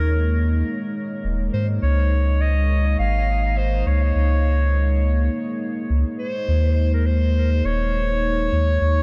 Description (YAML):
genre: ambient dub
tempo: 103 BPM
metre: 4/4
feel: swing 56% on 16ths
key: unclear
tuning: A4 = 440 Hz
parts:
  - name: warm clarinet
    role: melody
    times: 0.0-9.0 s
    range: Bb4 to F5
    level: -28 LUFS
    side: equal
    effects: dub echo
  - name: deep dark ambient pad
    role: sustained chords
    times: 0.0-9.0 s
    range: Ab3 to Eb5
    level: -30 LUFS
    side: equal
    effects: chorus, built-in reverb
  - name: soft dub sub bass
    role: bass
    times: 0.0-9.0 s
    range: Eb1 to Ab2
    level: -21 LUFS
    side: equal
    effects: tube saturation
room: light reverb, studio reverb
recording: none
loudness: -21 LUFS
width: mono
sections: 0.0-9.0 A section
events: none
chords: 0.0 Eb7sus4; 1.8 Dbsus2; 6.5 Eb7sus4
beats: 0.07 0.66 1.24 | 1.82 2.40 2.99 3.57 | 4.15 4.74 5.32 5.90 | 6.48 7.07 7.65 8.23 | 8.81